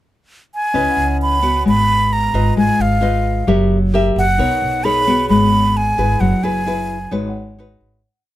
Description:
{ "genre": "bossa nova", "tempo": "132 BPM", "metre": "4/4", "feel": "straight", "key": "G# minor", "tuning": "A4 = 442 Hz", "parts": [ { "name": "breathy concert flute", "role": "melody", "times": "0.5-7.1 s", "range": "E#5 to B5", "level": "-17 LUFS", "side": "right 1 dB", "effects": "none" }, { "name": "nylon-string guitar", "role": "accompaniment", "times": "0.7-8.0 s", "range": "F#3 to E5", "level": "-18 LUFS", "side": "left 2 dB", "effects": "none" }, { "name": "tine electric piano", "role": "accompaniment", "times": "0.7-2.0, 4.8-8.2 s", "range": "G#4 to G#5", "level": "-26 LUFS", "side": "right 1 dB", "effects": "medium tremolo" }, { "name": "upright bass", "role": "bass", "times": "0.7-8.0 s", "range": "F#1 to C#2", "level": "-19 LUFS", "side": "right 1 dB", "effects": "none" } ], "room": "little or no reverb", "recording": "close, detailed microphones", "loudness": "-14 LUFS", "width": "side -14 dB against mid", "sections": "0.0-0.7 pickup bar; 0.7-8.0 A section", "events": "fade-out 6.2-8.0", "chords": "0.0 N.C.; 0.7 C#m9; 1.7 G#m9; 2.6 G#m6; 3.5 F#7b9; 4.4 Bmaj9; 5.3 G#m7; 6.2 F#9sus4; 7.1 G#m7", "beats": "0.29 | 0.74 1.20 1.65 2.11 | 2.56 3.02 3.48 3.93 | 4.39 4.84 5.30 5.76 | 6.21 6.67 7.12 7.58" }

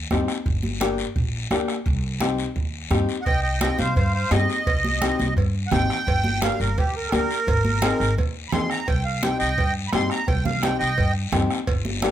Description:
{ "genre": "latin, cumbia", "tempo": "171 BPM", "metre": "4/4", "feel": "straight", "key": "C minor", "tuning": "A4 = 436 Hz", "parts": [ { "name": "upright bass", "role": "bass", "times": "0.0-12.1 s", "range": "G1 to G2", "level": "-25 LUFS", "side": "equal", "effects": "none" }, { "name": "warm upright piano", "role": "accompaniment", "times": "0.1-12.1 s", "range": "Bb3 to Ab4", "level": "-26 LUFS", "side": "left 4 dB", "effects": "none" }, { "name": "bombo", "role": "percussion", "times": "0.1-12.1 s", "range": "none", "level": "-26 LUFS", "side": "right 2 dB", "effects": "none" }, { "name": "congas", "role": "percussion", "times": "0.1-12.1 s", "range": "none", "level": "-29 LUFS", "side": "right 1 dB", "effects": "none" }, { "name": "guiro", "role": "percussion", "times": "0.1-12.1 s", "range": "none", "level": "-34 LUFS", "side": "left 7 dB", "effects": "none" }, { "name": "accordion", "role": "melody", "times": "3.2-11.1 s", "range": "G4 to C6", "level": "-25 LUFS", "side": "right 3 dB", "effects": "light tremolo tuning" }, { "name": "cowbell and timbales", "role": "percussion", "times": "3.3-12.1 s", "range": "none", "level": "-34 LUFS", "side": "right 4 dB", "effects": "none" } ], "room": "light reverb", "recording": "close, detailed microphones", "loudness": "-20 LUFS", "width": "side -11 dB against mid", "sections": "0.0-3.3 A section; 3.3-12.1 B section", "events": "accordion solo 3.3-12.1", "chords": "0.5 Gm; 1.9 Cm; 6.1 Gm; 7.5 Ab; 8.9 Cm", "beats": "0.10 | 0.46 0.81 1.16 1.51 | 1.86 2.21 2.56 2.91 | 3.27 3.62 3.97 4.32 | 4.67 5.02 5.37 5.72 | 6.07 6.42 6.77 7.12 | 7.47 7.83 8.18 8.53 | 8.88 9.23 9.58 9.93 | 10.28 10.62 10.97 11.32 | 11.68 12.02" }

